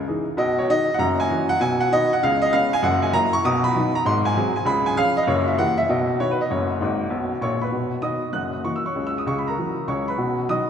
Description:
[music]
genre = jazz, stride piano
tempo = 196 BPM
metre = 4/4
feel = swing 64% on 8ths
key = B major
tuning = A4 = 440 Hz
[part]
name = clear upright piano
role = solo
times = 0.0-10.7 s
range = F#1 to F#6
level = -19 LUFS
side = equal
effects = none
[sound]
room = wet church reverb, RT60 3.4 s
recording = recorded in a church or concert hall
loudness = -19 LUFS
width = side -8 dB against mid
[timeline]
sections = 0.0-7.7 A section; 7.7-10.7 B section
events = upright piano fill 6.8-7.7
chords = 0.4 B; 1.0 F#5; 1.6 B; 2.2 C#5; 2.8 F#7; 3.4 B; 4.0 G#7; 4.7 C#; 5.3 F#7b9; 5.9 B; 6.5 F#; 7.7 B; 8.3 F#7; 8.9 F#7/C#; 10.2 B

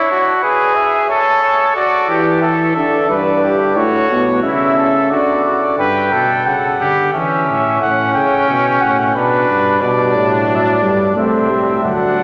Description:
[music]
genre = classical, imitative canzona for brass ensemble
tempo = 89 BPM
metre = 3/4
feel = straight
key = unclear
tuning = A4 = 440 Hz
[part]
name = warm cornet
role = melody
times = 0.0-12.2 s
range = B4 to G5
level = -20 LUFS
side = equal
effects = none
[part]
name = warm trumpet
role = second line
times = 0.0-12.2 s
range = C4 to B4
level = -18 LUFS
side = equal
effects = none
[part]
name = warm euphonium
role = accompaniment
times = 2.1-5.8, 9.8-12.2 s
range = G2 to A3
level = -20 LUFS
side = equal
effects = none
[part]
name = warm bass trombone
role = bass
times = 5.8-12.2 s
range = C2 to E3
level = -22 LUFS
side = equal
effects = none
[sound]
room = wet cathedral reverb, RT60 5.4 s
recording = nothing above 7.9 kHz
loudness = -14 LUFS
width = mono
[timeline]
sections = 0.0-5.8 A section; 5.8-12.2 B section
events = none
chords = 0.0 E; 1.1 A; 1.8 D; 3.1 G; 3.8 A; 5.1 D; 5.8 G; 7.1 A; 7.8 F#m/A; 9.2 Bm; 9.8 G; 11.2 C

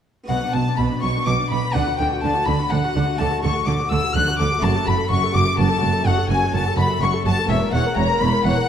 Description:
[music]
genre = classical, baroque-style concerto movement with solo episodes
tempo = 125 BPM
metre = 3/4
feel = straight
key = B minor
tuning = A4 = 440 Hz
[part]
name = harpsichord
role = accompaniment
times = 0.2-8.7 s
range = E2 to D5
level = -28 LUFS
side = left 1 dB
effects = none
[part]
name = warm chamber violin section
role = melody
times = 0.3-8.7 s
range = E5 to F#6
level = -27 LUFS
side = left 4 dB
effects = none
[part]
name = warm violin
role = melody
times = 0.3-8.7 s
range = E5 to F#6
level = -25 LUFS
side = left 3 dB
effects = none
[part]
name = warm chamber violin section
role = second line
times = 0.3-8.7 s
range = E5 to F#6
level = -28 LUFS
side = left 2 dB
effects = none
[part]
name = dark chamber viola section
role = accompaniment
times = 0.3-8.7 s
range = B3 to C#5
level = -27 LUFS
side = left 3 dB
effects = none
[part]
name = rich chamber double bass section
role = bass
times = 0.3-8.5 s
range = E1 to D2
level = -23 LUFS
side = right 2 dB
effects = none
[part]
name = warm chamber cello section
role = bass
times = 0.3-8.5 s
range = E2 to D3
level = -24 LUFS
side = right 3 dB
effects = none
[sound]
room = wet recital hall reverb, RT60 1.4 s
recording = dark, warm production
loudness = -17 LUFS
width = side -8 dB against mid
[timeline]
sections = 0.3-8.7 A section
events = none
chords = 0.3 Bm; 1.7 Bm/D; 3.2 D; 4.6 D/F#; 6.1 F#m; 7.5 F#7/E

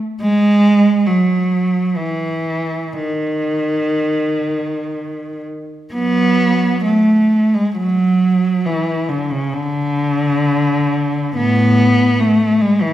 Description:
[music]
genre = classical, free, expressive piece for unaccompanied cello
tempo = 50-75 BPM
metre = 3/4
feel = rubato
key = F# dorian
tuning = A4 = 437 Hz
[part]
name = warm cello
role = solo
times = 0.2-12.9 s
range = A2 to B3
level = -14 LUFS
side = equal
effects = none
[sound]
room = wet recital hall reverb, RT60 1.5 s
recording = recorded in a church or concert hall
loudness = -13 LUFS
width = side -12 dB against mid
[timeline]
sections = 0.0-5.9 A section; 5.9-12.9 B section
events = none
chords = none

